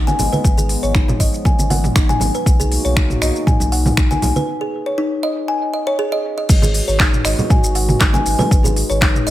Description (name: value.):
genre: afro house.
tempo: 119 BPM.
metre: 4/4.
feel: swing 53% on 16ths.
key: G# dorian.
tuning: A4 = 440 Hz.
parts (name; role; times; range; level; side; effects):
dark analog pad; sustained chords; 0.0-9.3 s; E#3 to B4; -26 LUFS; left 1 dB; wide subtle chorus, sidechain pumping.
kalimba; arpeggios; 0.0-9.3 s; D#4 to G#5; -20 LUFS; equal; sidechain pumping, dub echo.
warm sub bass; bass; 0.0-9.3 s; G#1 to B1; -20 LUFS; equal; sidechain pumping.
deep house drum kit; drums; 0.1-9.3 s; crash cymbal, finger snaps, handclaps, hi-hat, shaker, toms; -21 LUFS; equal; small room reverb.
congas; percussion; 0.1-8.7 s; none; -21 LUFS; right 1 dB; none.
electronic kick drum; drums; 0.4-9.1 s; none; -15 LUFS; equal; small room reverb.
room: light reverb, digital ambience.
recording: none.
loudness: -14 LUFS.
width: side -14 dB against mid.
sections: 0.0-6.5 A section; 6.5-9.3 B section.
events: break 4.5-6.5; drop 6.5-9.3.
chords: 0.0 G#m7; 2.5 Bmaj7; 6.5 G#m7.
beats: | 0.45 0.95 1.46 1.96 | 2.46 2.97 3.47 3.98 | 4.48 4.99 5.49 5.99 | 6.50 7.00 7.51 8.01 | 8.52 9.02.